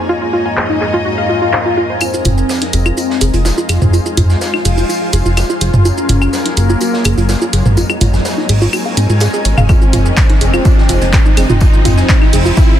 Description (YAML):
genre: melodic techno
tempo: 125 BPM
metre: 4/4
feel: straight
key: F phrygian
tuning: A4 = 442 Hz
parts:
  - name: warm studio string section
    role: sustained chords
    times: 0.0-12.8 s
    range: Ab2 to Eb5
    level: -23 LUFS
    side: left 2 dB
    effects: sidechain pumping, low-pass filter
  - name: warbly dusty pluck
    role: arpeggios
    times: 0.0-12.7 s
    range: C4 to Ab5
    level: -19 LUFS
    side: right 2 dB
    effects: chorus, sidechain pumping, digital delay
  - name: bowed-like drone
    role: drone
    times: 0.0-2.1 s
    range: F2 to F3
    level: -30 LUFS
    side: right 2 dB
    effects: built-in reverb, sidechain pumping
  - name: granular cloud pad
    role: texture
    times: 0.0-12.8 s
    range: Gb3 to Bb5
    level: -22 LUFS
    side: left 1 dB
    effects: built-in reverb, sidechain pumping
  - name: punchy analog drum machine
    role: drums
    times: 0.6-12.7 s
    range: claves, handclaps, hi-hat, shaker, toms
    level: -17 LUFS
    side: right 1 dB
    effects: low-pass filter on snare, small room ambience, sidechain pumping on perc, low-pass filter on perc, sidechain pumping on hats, low-pass filter on hats, sidechain pumping on toms, low-pass filter on toms
  - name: swell and riser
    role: sound effects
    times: 1.2-12.8 s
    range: none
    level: -23 LUFS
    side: left 2 dB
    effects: none
  - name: expressive synth lead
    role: melody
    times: 2.0-12.8 s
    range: Bb3 to Db4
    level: -21 LUFS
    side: left 1 dB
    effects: analog chorus, sidechain pumping, tape echo
  - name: vintage drum kit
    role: drums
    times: 2.0-12.7 s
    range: hi-hat, snare drum, tambourine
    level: -26 LUFS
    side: equal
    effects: high-pass filter on hats, small room ambience, high-pass filter on snare, high-pass filter on perc, high-pass filter on room
  - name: fat analog bass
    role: bass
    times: 2.3-12.5 s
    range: F1 to Ab2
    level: -13 LUFS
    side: equal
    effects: sidechain pumping
  - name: electronic kick drum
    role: drums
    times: 9.7-12.7 s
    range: none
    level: -10 LUFS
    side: equal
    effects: small room ambience
room: light reverb, small room ambience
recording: dense, heavily limited modern master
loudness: -10 LUFS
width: side -11 dB against mid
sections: 0.0-2.0 A section; 2.0-12.8 B section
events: swell 1.2-2.0; build-up 2.0-12.8; riser 2.0-12.8; filter sweep on synth arpeggio sound 2.0-12.8; filter sweep on string section 2.0-12.8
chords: 0.0 Gbmaj7 (rootless); 2.0 Fm7; 5.9 Gbmaj7; 7.8 Absus2; 9.7 Fm7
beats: | 0.09 0.57 1.05 1.53 | 2.01 2.49 2.97 3.45 | 3.93 4.41 4.89 5.37 | 5.85 6.33 6.81 7.29 | 7.77 8.25 8.73 9.21 | 9.69 10.17 10.65 11.13 | 11.61 12.09 12.57